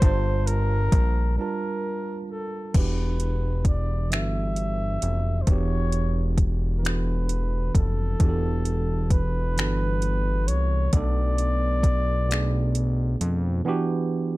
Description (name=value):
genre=slow six-eight R&B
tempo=44 BPM (dotted quarters)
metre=6/8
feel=straight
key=unclear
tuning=A4 = 443 Hz
part: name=breathy flugelhorn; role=melody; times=0.0-13.2 s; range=A4 to E5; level=-31 LUFS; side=left 1 dB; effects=ping-pong delay
part: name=tine electric piano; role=accompaniment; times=0.0-14.4 s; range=B2 to A5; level=-29 LUFS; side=right 3 dB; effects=none
part: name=fat analog bass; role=bass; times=0.0-13.6 s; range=E1 to F2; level=-24 LUFS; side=equal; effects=none
part: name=smooth R&B drum kit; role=drums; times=0.0-13.4 s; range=crash cymbal, finger snaps, hi-hat, kick drum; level=-22 LUFS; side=equal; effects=overdrive
room=little or no reverb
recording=dark, warm production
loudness=-22 LUFS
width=side -19 dB against mid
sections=0.0-2.7 A section; 2.7-13.7 B section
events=break 1.4-2.7; kick muted 12.3-13.7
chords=0.0 Gm9; 2.7 Em9; 10.9 Bm7; 13.7 Em9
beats=| 0.02 1.38 | 2.75 4.11 | 5.47 6.84 | 8.20 9.56 | 10.93 12.29 | 13.65